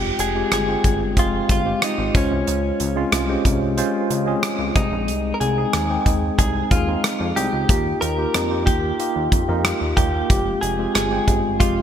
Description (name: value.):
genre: 1980s-style pop.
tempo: 92 BPM.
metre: 4/4.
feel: straight.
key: F minor.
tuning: A4 = 439 Hz.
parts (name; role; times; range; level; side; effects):
direct-recorded clean electric guitar; melody; 0.0-11.8 s; Db4 to Bb4; -24 LUFS; left 1 dB; wide subtle chorus.
bright tine electric piano; accompaniment; 0.0-11.8 s; Ab3 to G5; -23 LUFS; equal; medium stereo tremolo.
chorused synth bass; bass; 0.0-11.8 s; F1 to F2; -26 LUFS; equal; none.
modern studio drum kit; drums; 0.2-11.8 s; hi-hat, kick drum, rim click; -21 LUFS; equal; gated reverb.
room: moderate lush hall reverb, RT60 2.7 s.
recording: bright 1980s-style digital production.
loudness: -18 LUFS.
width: side -9 dB against mid.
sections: 0.0-11.8 A section.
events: none.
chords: 0.0 Fmadd9; 2.1 Dbmaj7; 4.8 Ab; 7.7 Ebadd9; 10.3 Fmadd9.